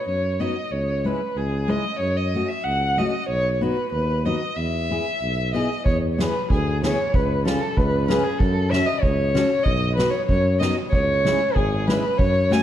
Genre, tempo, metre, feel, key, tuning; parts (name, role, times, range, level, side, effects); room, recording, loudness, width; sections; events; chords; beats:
alpine folk, alpine dance band; 94 BPM; 2/4; straight; E major; A4 = 440 Hz
dark violin; melody; 0.0-12.6 s; G#4 to G#5; -23 LUFS; equal
mellow tuba; bass; 0.1-12.6 s; G#1 to F#2; -24 LUFS; right 1 dB
fingerpicked steel-string acoustic guitar; accompaniment; 0.4-12.6 s; G#3 to A4; -27 LUFS; left 2 dB
soft-mallet drum kit; drums; 5.9-12.6 s; kick drum, snare drum; -25 LUFS; right 1 dB
moderate scoring stage reverb, RT60 1.6 s; dark, warm production; -19 LUFS; side -11 dB against mid
0.0-5.9 A section; 5.9-12.6 A section
0.0 B; 0.7 C#m; 2.0 F#m; 3.3 B; 4.6 E; 7.1 C#; 8.4 F#m; 9.7 B; 10.9 C#m
0.07 | 0.71 1.36 | 2.00 2.65 | 3.29 3.92 | 4.57 5.21 | 5.86 6.50 | 7.14 7.77 | 8.40 9.02 | 9.65 10.29 | 10.93 11.57 | 12.20